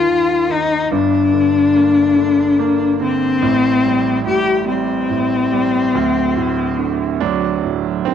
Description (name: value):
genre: six-eight pop ballad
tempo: 48 BPM (dotted quarters)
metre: 6/8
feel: straight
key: G minor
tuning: A4 = 437 Hz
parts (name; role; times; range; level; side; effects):
- dark cello; melody; 0.0-7.6 s; C4 to G4; -15 LUFS; left 5 dB; none
- clear concert grand piano; accompaniment; 0.0-8.1 s; D1 to D4; -19 LUFS; right 9 dB; none
room: moderate spring reverb, RT60 1.8 s, small room reverb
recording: home recording on cassette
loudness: -14 LUFS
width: side -8 dB against mid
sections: 0.0-8.1 A section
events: none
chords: 0.0 N.C.; 0.9 Gm; 3.4 Am7; 5.9 D5; 7.2 D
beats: | 0.91 2.16 | 3.42 4.68 | 5.94 7.21